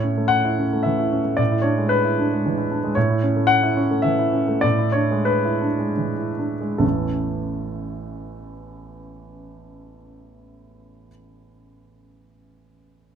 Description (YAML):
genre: classical, romantic character piece for solo piano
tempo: 69-117 BPM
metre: 3/4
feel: rubato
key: A major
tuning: A4 = 441 Hz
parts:
  - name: warm grand piano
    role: solo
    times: 0.0-13.2 s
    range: A1 to F#5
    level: -19 LUFS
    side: equal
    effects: none
room: light reverb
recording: close, detailed microphones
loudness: -18 LUFS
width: side -8 dB against mid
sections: 0.0-6.8 A section; 6.8-11.4 B section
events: slowing down 2.2-6.8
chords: 0.0 A; 1.4 E7/A; 3.0 A; 4.6 E7/A; 6.8 A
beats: 0.32 0.86 | 1.39 1.92 2.43 | 2.95 3.49 4.05 | 4.64 5.27 5.99 | 6.82 7.59 8.35 | 9.13 9.90 10.66